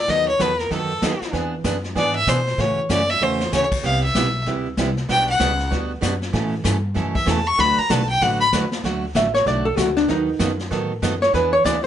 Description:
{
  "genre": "country, western swing",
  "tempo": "192 BPM",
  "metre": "4/4",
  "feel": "swing 62% on 8ths",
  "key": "D major",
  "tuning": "A4 = 442 Hz",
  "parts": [
    { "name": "clear fiddle", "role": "second line", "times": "0.0-8.5 s", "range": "A4 to C#6", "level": "-20 LUFS", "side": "left 2 dB", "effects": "none" },
    { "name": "upright bass", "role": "bass", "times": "0.0-11.9 s", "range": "A1 to B2", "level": "-26 LUFS", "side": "left 1 dB", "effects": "none" },
    { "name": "picked steel-string acoustic guitar", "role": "accompaniment", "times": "0.1-11.8 s", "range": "B2 to B4", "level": "-24 LUFS", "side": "right 4 dB", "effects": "none" },
    { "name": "vintage brush drum kit", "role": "drums", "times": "0.1-11.9 s", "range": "brushed snare drum, crash cymbal, hi-hat, kick drum, snare drum", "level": "-27 LUFS", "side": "left 2 dB", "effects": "none" },
    { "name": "vintage hollow-body jazz guitar", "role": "melody", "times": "9.2-11.9 s", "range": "D4 to E5", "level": "-18 LUFS", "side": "equal", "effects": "none" }
  ],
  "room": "moderate studio ambience, RT60 0.5 s",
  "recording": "nothing above 10.6 kHz",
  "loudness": "-18 LUFS",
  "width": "side -10 dB against mid",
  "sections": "0.0-8.8 A section; 8.8-11.9 A section",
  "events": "fiddle solo 0.0-8.8; drum fill 3.2-3.5; hollow-body jazz guitar solo 8.8-11.9",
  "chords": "0.1 B7/D#; 1.3 E7; 2.6 A6; 3.8 Cmaj7; 5.1 Gmaj7/B; 6.3 Aadd9; 7.6 D6; 8.8 D; 10.1 B7/D#; 11.3 E7",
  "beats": "| 0.09 0.40 0.71 1.02 | 1.34 1.65 1.96 2.28 | 2.59 2.90 3.21 3.53 | 3.84 4.15 4.46 4.78 | 5.09 5.40 5.71 6.02 | 6.34 6.65 6.96 7.27 | 7.59 7.90 8.21 8.52 | 8.84 9.15 9.46 9.77 | 10.09 10.40 10.71 11.02 | 11.34 11.65"
}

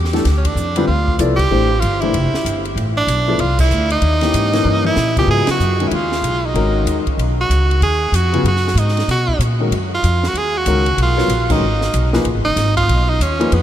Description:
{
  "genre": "modal jazz",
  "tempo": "190 BPM",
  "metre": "4/4",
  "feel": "swing 62% on 8ths",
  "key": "G# dorian from 5.3 s",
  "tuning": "A4 = 439 Hz",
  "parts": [
    { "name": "upright bass", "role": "bass", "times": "0.0-13.6 s", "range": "F1 to B2", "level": "-17 LUFS", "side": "equal", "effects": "none" },
    { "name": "compact cocktail drum kit", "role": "drums", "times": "0.0-13.6 s", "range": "crash cymbal, hi-hat, kick drum, ride cymbal, snare drum, toms", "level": "-25 LUFS", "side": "equal", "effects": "none" },
    { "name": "warm baby grand piano", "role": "accompaniment", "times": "0.1-13.5 s", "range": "C#3 to D5", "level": "-21 LUFS", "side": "left 3 dB", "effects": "wide subtle chorus" },
    { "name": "edgy tenor saxophone", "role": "melody", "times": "0.4-13.6 s", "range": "B3 to G#4", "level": "-18 LUFS", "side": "right 2 dB", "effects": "none" }
  ],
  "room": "moderate huge ambient reverb, RT60 6.5 s",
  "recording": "dreamy mix soaked in reverb",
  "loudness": "-14 LUFS",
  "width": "side -11 dB against mid",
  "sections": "0.0-5.3 A section; 5.3-13.6 B section",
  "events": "band accent 1.3, 3.6, 5.4, 11.5; drum fill 4.7-5.0",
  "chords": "0.2 Dm9; 4.0 D#7b9; 5.3 G#m9",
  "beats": "| 0.24 0.56 0.87 1.19 | 1.50 1.82 2.13 2.45 | 2.77 3.08 3.40 3.71 | 4.03 4.34 4.66 4.97 | 5.29 5.60 5.92 6.24 | 6.55 6.87 7.18 7.50 | 7.82 8.13 8.45 8.77 | 9.08 9.40 9.72 10.03 | 10.35 10.67 10.99 11.30 | 11.62 11.94 12.26 12.57 | 12.89 13.21 13.53"
}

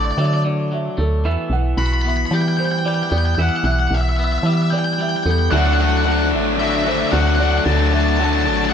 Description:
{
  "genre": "post-rock",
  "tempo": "112 BPM",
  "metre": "4/4",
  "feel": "straight",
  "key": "unclear",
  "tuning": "A4 = 441 Hz",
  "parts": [
    { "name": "octave-fuzz lead guitar", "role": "melody", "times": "0.0-8.7 s", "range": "D5 to B5", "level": "-22 LUFS", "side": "left 2 dB", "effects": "distortion, digital delay" },
    { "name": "pedal steel guitar", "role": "sustained chords", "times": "0.0-8.7 s", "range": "D3 to F#5", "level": "-33 LUFS", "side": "right 2 dB", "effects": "none" },
    { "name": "felt-muted upright piano", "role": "arpeggios", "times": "0.0-8.7 s", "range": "A4 to F#5", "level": "-29 LUFS", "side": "right 5 dB", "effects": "digital delay" },
    { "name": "twangy electric guitar", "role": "arpeggios", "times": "0.0-5.5 s", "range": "D3 to F#4", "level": "-26 LUFS", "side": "left 2 dB", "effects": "digital delay" },
    { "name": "woody FM bass", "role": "bass", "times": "0.0-8.7 s", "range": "A1 to E3", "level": "-19 LUFS", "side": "right 1 dB", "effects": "none" },
    { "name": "crunchy overdriven guitar", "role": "riff", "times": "5.5-8.7 s", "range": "D3 to D4", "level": "-20 LUFS", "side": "left 14 dB", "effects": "none" },
    { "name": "tight distorted guitar", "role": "riff", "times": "5.5-8.7 s", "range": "D3 to F#4", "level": "-22 LUFS", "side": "right 14 dB", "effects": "distortion" }
  ],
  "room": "light reverb, digital ambience",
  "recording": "none",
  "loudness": "-16 LUFS",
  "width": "side -8 dB against mid",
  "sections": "0.0-5.5 A section; 5.5-8.7 B section",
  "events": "none",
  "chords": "0.0 Dadd9; 1.3 Emadd9; 5.5 Dadd9",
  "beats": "0.19 0.72 | 1.25 1.79 2.32 2.85 | 3.39 3.92 4.46 4.99 | 5.52 6.06 6.59 7.12 | 7.66 8.19 8.72"
}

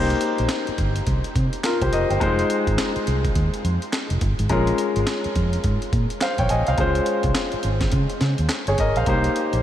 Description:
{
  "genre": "R&B, new jack swing",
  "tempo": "105 BPM",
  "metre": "4/4",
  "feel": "swing 61% on 16ths",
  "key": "Bb dorian",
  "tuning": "A4 = 438 Hz",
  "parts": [
    { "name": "clear baby grand piano", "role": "accompaniment", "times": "0.0-9.6 s", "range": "Ab3 to Ab5", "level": "-22 LUFS", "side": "left 2 dB", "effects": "none" },
    { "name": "vintage muted fingered electric bass", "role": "bass", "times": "0.0-9.6 s", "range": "F1 to Db3", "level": "-22 LUFS", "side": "right 1 dB", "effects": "none" },
    { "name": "breakbeat sampler-style drum kit", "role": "drums", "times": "0.1-9.6 s", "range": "handclaps, hi-hat, kick drum, snare drum", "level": "-26 LUFS", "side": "equal", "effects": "none" }
  ],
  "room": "moderate huge ambient reverb, RT60 7.5 s",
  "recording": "dreamy mix soaked in reverb",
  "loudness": "-19 LUFS",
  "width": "side -11 dB against mid",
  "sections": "0.0-9.6 A section",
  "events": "none",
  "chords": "0.0 Cm7; 2.2 Fm7; 4.5 Bbm7; 6.8 Dbmaj7; 9.1 Cm7",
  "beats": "0.50 1.07 1.64 | 2.21 2.79 3.36 3.93 | 4.50 5.07 5.64 6.21 | 6.79 7.36 7.93 8.50 | 9.07"
}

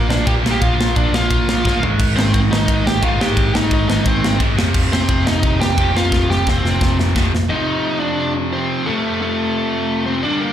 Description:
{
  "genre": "punk rock",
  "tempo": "174 BPM",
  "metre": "4/4",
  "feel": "straight",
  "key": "unclear",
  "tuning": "A4 = 444 Hz",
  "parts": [
    { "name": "high-gain lead guitar", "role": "melody", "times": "0.0-10.5 s", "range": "A3 to G5", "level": "-20 LUFS", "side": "equal", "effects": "distortion, slapback echo, digital delay" },
    { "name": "distorted electric guitar", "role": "riff", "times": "0.0-10.5 s", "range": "F2 to Bb3", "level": "-20 LUFS", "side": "right 1 dB", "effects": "distortion, slapback echo" },
    { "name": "hollow-body short-scale picked electric bass", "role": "bass", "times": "0.0-7.5 s", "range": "F1 to Bb1", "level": "-20 LUFS", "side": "equal", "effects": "none" },
    { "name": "tight metal drum kit", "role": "drums", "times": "0.1-7.4 s", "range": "crash cymbal, kick drum, ride cymbal, snare drum, toms", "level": "-19 LUFS", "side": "equal", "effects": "none" }
  ],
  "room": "small room ambience",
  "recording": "live gig heard through the venue's PA, club reverb",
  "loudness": "-14 LUFS",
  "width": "side -10 dB against mid",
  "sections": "0.0-7.5 A section; 7.5-10.5 B section",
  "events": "drum fill 1.6-2.0, 6.1-7.5; half time 7.5-10.5",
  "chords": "0.0 Bb; 1.8 Ab; 4.6 F5",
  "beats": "0.27 | 0.61 0.95 1.30 1.65 | 1.99 2.33 2.68 3.02 | 3.37 3.71 4.06 4.40 | 4.75 5.09 5.43 5.78 | 6.12 6.47 6.81 7.15 | 7.50 7.84 8.19 8.53 | 8.88 9.22 9.56 9.91 | 10.25"
}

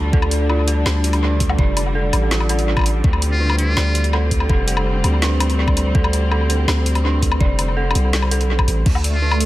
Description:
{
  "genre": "half-time drum and bass",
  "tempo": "165 BPM",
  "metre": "4/4",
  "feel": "half-time",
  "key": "D minor",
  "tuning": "A4 = 438 Hz",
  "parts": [
    { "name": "rich studio string section", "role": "sustained chords", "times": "0.0-9.5 s", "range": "D3 to D4", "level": "-25 LUFS", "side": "left 1 dB", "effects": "vintage 12-bit sampler grit, sidechain pumping" },
    { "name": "dark detuned synth bell", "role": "arpeggios", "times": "0.0-9.5 s", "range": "D4 to D5", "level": "-25 LUFS", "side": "right 3 dB", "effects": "chorus, tape echo" },
    { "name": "long sustained 808-style bass", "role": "bass", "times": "0.0-9.5 s", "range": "F1 to D2", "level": "-18 LUFS", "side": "equal", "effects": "none" },
    { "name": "electronic kick drum", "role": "drums", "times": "0.1-8.9 s", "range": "none", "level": "-18 LUFS", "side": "equal", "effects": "overdrive" },
    { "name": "drum and bass drum kit", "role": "drums", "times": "0.2-9.5 s", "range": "crash cymbal, hi-hat, snare drum, woodblock", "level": "-24 LUFS", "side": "left 2 dB", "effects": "overdrive, dub echo" },
    { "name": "trumpet with metal mute", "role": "melody", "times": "3.3-4.1, 9.1-9.4 s", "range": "F4", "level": "-26 LUFS", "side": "equal", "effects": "analog delay" },
    { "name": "backwards swelling texture", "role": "texture", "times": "9.0-9.5 s", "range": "A3 to A4", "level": "-27 LUFS", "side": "right 6 dB", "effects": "built-in reverb" }
  ],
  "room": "light reverb",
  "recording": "echo-heavy mix",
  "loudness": "-15 LUFS",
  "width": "side -16 dB against mid",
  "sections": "0.0-8.9 A section",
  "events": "drop 0.0-8.9",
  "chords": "0.0 D5",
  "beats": "| 0.13 0.49 0.86 1.22 | 1.58 1.95 2.31 2.68 | 3.04 3.40 3.77 4.13 | 4.49 4.86 5.22 5.58 | 5.95 6.31 6.68 7.04 | 7.40 7.77 8.13 8.49 | 8.86 9.22"
}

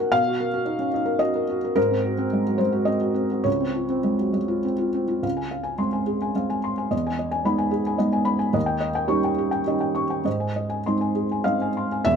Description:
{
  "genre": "neoclassical minimalist piano",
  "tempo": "99-112 BPM",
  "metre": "3/4",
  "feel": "rubato",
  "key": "Db major",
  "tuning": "A4 = 441 Hz",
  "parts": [
    { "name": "felt-muted upright piano", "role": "solo", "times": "0.0-12.2 s", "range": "E1 to Db6", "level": "-21 LUFS", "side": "equal", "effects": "none" }
  ],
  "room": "little or no reverb",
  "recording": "none",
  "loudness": "-21 LUFS",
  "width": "side -6 dB against mid",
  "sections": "0.0-5.2 A section; 5.2-12.1 B section",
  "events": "none",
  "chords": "0.0 Cbmaj7; 1.8 Ab7; 3.5 Dbmaj7; 6.9 Emaj7; 8.6 Eb7; 10.3 Ab",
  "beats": "| 0.12 0.65 1.21 | 1.76 2.32 2.88 | 3.46 4.06 4.66 | 5.24 5.80 6.36 | 6.92 7.47 8.01 | 8.55 9.10 9.67 | 10.26 10.86 11.46 | 12.06"
}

